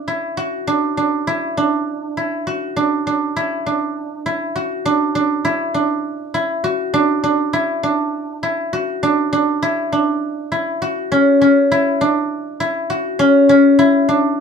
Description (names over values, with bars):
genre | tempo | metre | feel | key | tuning
progressive instrumental, progressive | 201 BPM (eighths) | 7/8 | straight | unclear | A4 = 445 Hz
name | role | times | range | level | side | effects
guzheng | solo | 0.0-14.4 s | C#4 to F#4 | -15 LUFS | equal | none
room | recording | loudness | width
moderate studio reverb, RT60 0.6 s | minimal, uncompressed stereo recording | -15 LUFS | side -6 dB against mid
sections
0.0-2.8 A section; 2.8-14.4 B section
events
none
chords
0.0 F#5; 2.8 Dadd9; 11.1 F#5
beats
0.07 0.37 | 0.67 0.97 1.27 1.57 1.87 2.17 2.47 | 2.77 3.06 3.36 3.66 3.96 4.26 4.56 | 4.86 5.16 5.45 5.75 6.05 6.35 6.65 | 6.94 7.24 7.54 7.84 8.14 8.43 8.73 | 9.03 9.33 9.62 9.92 10.22 10.52 10.82 | 11.11 11.41 11.71 12.01 12.30 12.60 12.90 | 13.20 13.50 13.79 14.09 14.39